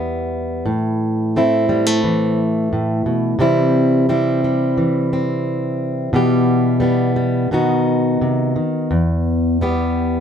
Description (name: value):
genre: folk, solo fingerstyle acoustic guitar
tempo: 87 BPM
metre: 4/4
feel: rubato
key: E minor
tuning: A4 = 441 Hz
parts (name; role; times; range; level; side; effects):
- fingerpicked plugged-in steel-string acoustic guitar; solo; 0.0-10.2 s; E2 to G4; -15 LUFS; equal; none
room: light reverb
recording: close, detailed microphones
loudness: -15 LUFS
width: side -8 dB against mid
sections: 0.0-10.2 A section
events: none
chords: 0.0 Em; 0.7 Am; 3.4 C; 6.1 Em/B; 7.5 B; 8.9 Em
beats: | 0.67 1.36 2.05 2.73 | 3.41 4.10 4.79 5.47 | 6.14 6.82 7.51 8.21 | 8.92 9.62